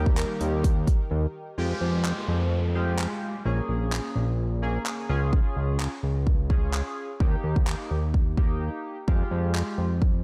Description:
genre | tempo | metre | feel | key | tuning
dance-pop | 128 BPM | 4/4 | straight | F minor | A4 = 438 Hz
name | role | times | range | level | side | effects
marimba with medium mallets | melody | 0.0-1.1 s | G4 to Eb5 | -38 LUFS | equal | digital delay
chorused polysynth | accompaniment | 0.0-9.9 s | G3 to Ab4 | -36 LUFS | equal | sidechain pumping
warm analog pad | sustained chords | 0.0-1.6 s | Eb3 to Bb4 | -42 LUFS | equal | chorus, sidechain pumping
fat analog bass | bass | 0.0-10.2 s | Bb1 to F2 | -28 LUFS | equal | sidechain pumping
pop drum kit | drums | 0.1-10.1 s | handclaps, hi-hat, kick drum | -28 LUFS | equal | none
downlifter | sound effects | 1.6-5.3 s | none | -42 LUFS | equal | none
room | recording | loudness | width
digital ambience | dark, warm production | -26 LUFS | mono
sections
0.0-1.6 A section; 1.6-10.2 B section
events
break 1.1-1.6, 8.6-9.1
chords
0.0 Eb; 1.6 Fmadd9; 3.5 Bbm7; 5.1 Db; 7.2 Eb; 9.1 Fmadd9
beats
0.17 0.64 1.11 | 1.58 2.05 2.52 2.98 | 3.45 3.92 4.39 4.86 | 5.33 5.80 6.27 6.74 | 7.20 7.67 8.14 8.61 | 9.08 9.55 10.02

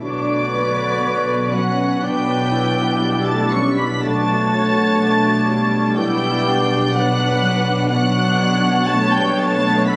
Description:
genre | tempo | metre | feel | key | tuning
cinematic | 61 BPM | 4/4 | rubato | B minor | A4 = 440 Hz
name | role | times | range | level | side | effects
rich studio violin section | melody | 0.0-10.0 s | D6 to C#7 | -28 LUFS | equal | none
hollow concert flute | second line | 0.0-10.0 s | D5 to C#6 | -29 LUFS | equal | none
rich studio violin section | second line | 0.0-10.0 s | D5 to C#6 | -30 LUFS | equal | none
warm clarinet | second line | 0.0-10.0 s | D4 to F#4 | -30 LUFS | equal | none
warm oboe | second line | 0.0-10.0 s | A4 to D5 | -28 LUFS | equal | none
warm studio viola section | accompaniment | 0.0-10.0 s | G3 to C#5 | -25 LUFS | equal | none
dark French horn section | sustained chords | 0.0-10.0 s | D3 to C#4 | -27 LUFS | equal | none
concert harp | arpeggios | 0.0-10.0 s | B2 to C#5 | -30 LUFS | equal | none
dark studio double bass section | bass | 0.0-10.0 s | B1 | -27 LUFS | equal | none
warm studio cello section | bass | 0.0-10.0 s | B2 | -27 LUFS | equal | none
room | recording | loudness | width
wet recital hall reverb, RT60 1.7 s | recorded on a phone in the room, club reverb | -18 LUFS | mono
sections
0.0-10.0 A section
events
none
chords
0.0 Bmadd9; 2.0 Gmaj7/B; 4.0 Bmadd9; 6.0 Gmaj7/B; 7.9 Bmadd9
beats
| 0.03 1.04 2.03 3.02 | 4.02 5.00 5.97 6.93 | 7.89 8.87 9.87

